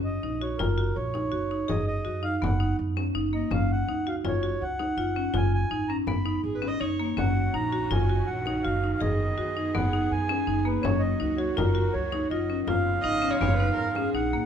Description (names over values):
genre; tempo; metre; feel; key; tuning
contemporary instrumental, chamber music in an uneven meter; 164 BPM; 5/4; straight; F# major; A4 = 440 Hz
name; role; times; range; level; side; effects
mellow accordion; melody; 0.0-14.5 s; A#4 to B5; -31 LUFS; right 1 dB; none
marimba with hard mallets; arpeggios; 0.0-14.5 s; A#3 to G#4; -28 LUFS; left 2 dB; none
upright bass; bass; 0.0-14.5 s; F#1 to F#2; -29 LUFS; right 2 dB; none
frame drum; percussion; 0.6-14.2 s; none; -35 LUFS; left 4 dB; none
dark viola; second line; 6.4-7.1, 13.0-14.5 s; G#4 to D#5; -31 LUFS; right 2 dB; none
rich symphonic string section; sustained chords; 7.2-14.5 s; C#3 to G#4; -37 LUFS; right 1 dB; none
room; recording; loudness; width
moderate recital hall reverb, RT60 1.4 s; minimal, uncompressed stereo recording; -24 LUFS; side -8 dB against mid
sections
0.0-14.5 A section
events
none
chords
0.0 D#m7/F#; 1.7 B6/F# (rootless); 3.5 F#5; 5.3 C#7/F#; 7.2 D#m7/F#; 9.0 B6/F#; 10.8 F#maj7; 12.7 C#7/F#